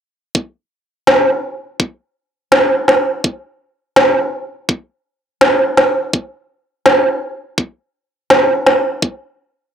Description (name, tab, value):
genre	half-time drum and bass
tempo	166 BPM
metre	4/4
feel	swing 59% on 16ths, half-time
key	none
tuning	none
part	electronic kick drum	drums	0.4-9.1 s	none	-16 LUFS	equal	high-pass filter on kick, high-pass filter on room
part	electronic snare drum	drums	1.1-8.8 s	none	-11 LUFS	equal	none
room	wet digital room reverb, RT60 0.9 s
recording	dry, gritty hardware recording, cassette tape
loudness	-13 LUFS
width	side -8 dB against mid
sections	0.4-9.7 A section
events	none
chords	none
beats	| 0.35 0.71 1.07 1.44 | 1.80 2.16 2.52 2.88 | 3.24 3.60 3.97 4.33 | 4.69 5.05 5.41 5.77 | 6.13 6.50 6.86 7.22 | 7.58 7.94 8.30 8.66 | 9.03